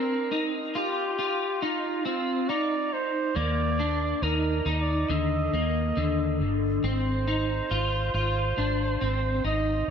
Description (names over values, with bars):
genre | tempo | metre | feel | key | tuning
dream pop | 69 BPM | 4/4 | straight | unclear | A4 = 440 Hz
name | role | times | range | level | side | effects
trumpet with bucket mute | melody | 0.0-9.9 s | F4 to Eb5 | -30 LUFS | right 3 dB | dub echo
electric guitar at the edge of break-up | arpeggios | 0.0-9.9 s | D3 to F4 | -28 LUFS | left 2 dB | ensemble chorus, dub echo
vintage muted fingered electric bass | bass | 3.4-9.9 s | G1 to Eb2 | -28 LUFS | equal | none
room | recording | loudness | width
moderate echo chamber reverb, RT60 1.5 s | echo-heavy mix | -24 LUFS | side -7 dB against mid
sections
0.0-9.9 A section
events
none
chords
0.0 F5; 3.4 Ebmaj7(no3); 6.8 Ab6